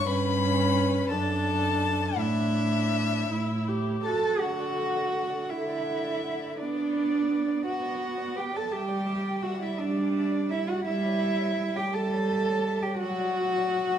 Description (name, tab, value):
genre	classical, slow romantic movement for string quartet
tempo	56 BPM (dotted quarters)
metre	6/8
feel	uneven beats, rubato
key	D major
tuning	A4 = 440 Hz
part	dark violin	melody	0.0-14.0 s	B4 to B5	-35 LUFS	left 8 dB	none
part	dark violin	second line	0.0-14.0 s	E4 to A5	-34 LUFS	left 4 dB	none
part	dark viola	accompaniment	0.0-14.0 s	D3 to G4	-31 LUFS	right 1 dB	none
part	dark cello	bass	0.0-14.0 s	F#2 to A4	-28 LUFS	right 3 dB	none
room	wet stone room reverb, RT60 1.2 s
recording	none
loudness	-25 LUFS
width	side -9 dB against mid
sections	0.0-4.4 A section; 4.4-14.0 B section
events	none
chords	0.1 G; 1.1 D/F#; 2.2 Asus4; 3.3 A5; 4.4 D; 6.6 Bm; 8.7 Em7/G; 10.9 A7/G; 13.0 D/F#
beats	| 0.07 1.10 | 2.19 3.29 | 4.41 5.50 | 6.58 7.66 | 8.73 9.79 | 10.85 11.93 | 12.98